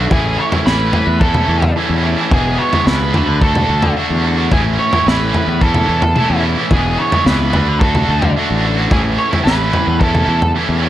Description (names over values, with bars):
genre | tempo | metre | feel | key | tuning
psychedelic rock | 109 BPM | 4/4 | straight | unclear | A4 = 440 Hz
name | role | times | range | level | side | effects
cranked stack guitar | riff | 0.0-10.9 s | E2 to F#4 | -18 LUFS | right 1 dB | overdrive, harmonic tremolo
fuzz fingered electric bass | bass | 0.0-10.9 s | E1 to E2 | -18 LUFS | equal | overdrive
octave-fuzz lead guitar | melody | 0.1-10.5 s | G#4 to C#5 | -19 LUFS | right 2 dB | distortion, slapback echo
crunchy breakbeat drum kit | drums | 0.1-10.5 s | kick drum, snare drum, toms | -17 LUFS | equal | none
room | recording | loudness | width
light reverb, small room ambience | none | -12 LUFS | side -13 dB against mid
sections
0.0-10.9 A section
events
none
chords
0.1 A; 2.3 E; 3.1 Dadd9; 4.5 A; 6.7 E; 7.5 D; 8.9 A